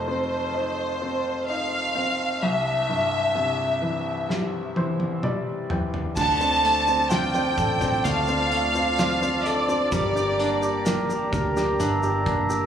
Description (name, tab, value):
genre	pop ballad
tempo	64 BPM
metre	4/4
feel	straight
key	D minor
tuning	A4 = 440 Hz
part	rich studio violin section	melody	0.0-10.8 s	C5 to A5	-24 LUFS	equal	tape echo
part	clear concert grand piano	accompaniment	0.0-12.7 s	C2 to G5	-27 LUFS	left 1 dB	slapback echo
part	warm brass ensemble	sustained chords	0.0-12.7 s	C2 to Bb5	-31 LUFS	equal	none
part	loose indie drum kit	drums	4.3-12.5 s	crash cymbal, hi-hat, kick drum, snare drum, toms	-30 LUFS	equal	none
part	fingerpicked steel-string acoustic guitar	arpeggios	6.2-12.7 s	G2 to A4	-32 LUFS	right 2 dB	slapback echo, tape echo
part	fingered electric bass	bass	6.2-12.7 s	G1 to D2	-30 LUFS	right 1 dB	none
part	tube shaker	percussion	6.2-12.7 s	none	-42 LUFS	left 1 dB	none
room	light reverb, small room ambience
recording	live gig heard through the venue's PA, club reverb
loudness	-21 LUFS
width	side -8 dB against mid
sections	0.0-6.2 A section; 6.2-12.7 B section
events	grand piano fill 4.3-6.2; drum fill 4.3-6.2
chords	0.0 F7; 2.4 Cadd9; 6.2 Dm7; 9.9 Gm